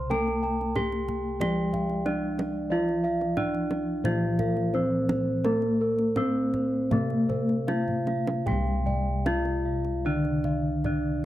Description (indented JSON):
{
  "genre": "Javanese gamelan",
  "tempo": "75-92 BPM",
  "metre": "4/4",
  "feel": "straight",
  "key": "C slendro",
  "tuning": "A4 = 439 Hz",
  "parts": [
    { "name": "gamelan-type bronze metallophone", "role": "melody", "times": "0.0-11.2 s", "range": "Bb3-45c to C5", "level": "-29 LUFS", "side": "equal", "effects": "none" },
    { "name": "gamelan-type bronze metallophone", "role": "accompaniment", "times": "0.0-11.2 s", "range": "C3 to Bb3-45c", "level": "-31 LUFS", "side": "left 1 dB", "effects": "none" },
    { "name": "gamelan-type bronze metallophone", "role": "arpeggios", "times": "0.0-11.2 s", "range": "Bb4-45c to Bb5-45c", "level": "-34 LUFS", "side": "right 5 dB", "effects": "none" },
    { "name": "gamelan-type bossed gongs", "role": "bass", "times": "0.0-11.2 s", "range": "C2 to Bb4-45c", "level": "-30 LUFS", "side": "equal", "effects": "none" },
    { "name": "gamelan-type bossed gongs", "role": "arpeggios", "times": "0.1-11.2 s", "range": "Bb4-45c to G5+25c", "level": "-35 LUFS", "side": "left 4 dB", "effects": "none" },
    { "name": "kendang", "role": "percussion", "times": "0.1-11.0 s", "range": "none", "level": "-33 LUFS", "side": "right 2 dB", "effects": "none" }
  ],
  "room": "light reverb, small room reverb",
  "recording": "dry, close 1970s-style studio recording",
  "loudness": "-24 LUFS",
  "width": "side -14 dB against mid",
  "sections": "0.0-8.5 A section; 8.5-11.2 B section",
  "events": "drum fill 7.9-8.5",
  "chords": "none"
}